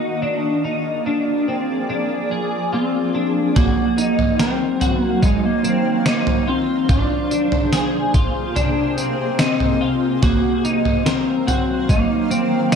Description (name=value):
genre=dream pop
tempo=72 BPM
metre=4/4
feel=straight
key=Eb dorian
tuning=A4 = 440 Hz
part: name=shimmering ambient pad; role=sustained chords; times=0.0-12.8 s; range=C3 to F5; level=-24 LUFS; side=right 1 dB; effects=chorus, built-in reverb, low-pass filter
part: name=twelve-string electric guitar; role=arpeggios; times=0.0-12.8 s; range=C4 to Bb4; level=-23 LUFS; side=left 2 dB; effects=ensemble chorus, low-pass filter, digital delay
part: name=electric slide guitar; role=melody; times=2.7-12.8 s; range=Ab3 to D4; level=-20 LUFS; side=equal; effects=digital delay
part: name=gated 80s digital drum machine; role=drums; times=3.6-12.8 s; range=kick drum, snare drum, tambourine, toms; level=-20 LUFS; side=right 1 dB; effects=gated reverb, gated reverb snare
room=moderate concert hall reverb, RT60 2.3 s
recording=dark, warm production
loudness=-16 LUFS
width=side -6 dB against mid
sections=0.0-3.6 A section; 3.6-12.8 B section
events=none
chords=0.2 Bb7; 3.6 Ebm69; 6.9 Bb9; 10.2 Ebm69